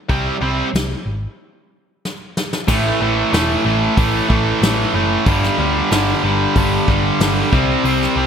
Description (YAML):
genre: hard rock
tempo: 93 BPM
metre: 4/4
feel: straight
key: A minor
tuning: A4 = 441 Hz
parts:
  - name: tight distorted guitar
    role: riff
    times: 0.1-8.3 s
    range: G2 to C4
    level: -22 LUFS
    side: left 9 dB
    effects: distortion
  - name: tight distorted guitar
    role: riff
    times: 0.1-8.3 s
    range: G2 to C4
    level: -19 LUFS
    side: right 9 dB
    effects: distortion
  - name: hollow-body short-scale picked electric bass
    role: bass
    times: 0.1-8.3 s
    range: E1 to D2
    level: -21 LUFS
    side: equal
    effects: none
  - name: soft brush drum kit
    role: drums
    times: 0.1-8.1 s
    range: crash cymbal, hi-hat, kick drum, snare drum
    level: -20 LUFS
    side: left 1 dB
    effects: gated reverb
  - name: distorted electric guitar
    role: riff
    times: 2.7-8.3 s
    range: G2 to C4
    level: -21 LUFS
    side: left 2 dB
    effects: distortion
room: moderate lush hall reverb, RT60 1.8 s, small room ambience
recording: bright 1980s-style digital production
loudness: -14 LUFS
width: side -7 dB against mid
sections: 0.0-2.7 A section; 2.7-8.3 B section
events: break 1.4-2.7; drum fill 2.0-2.7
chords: 0.1 C5; 2.7 A5; 5.3 G5; 7.5 C5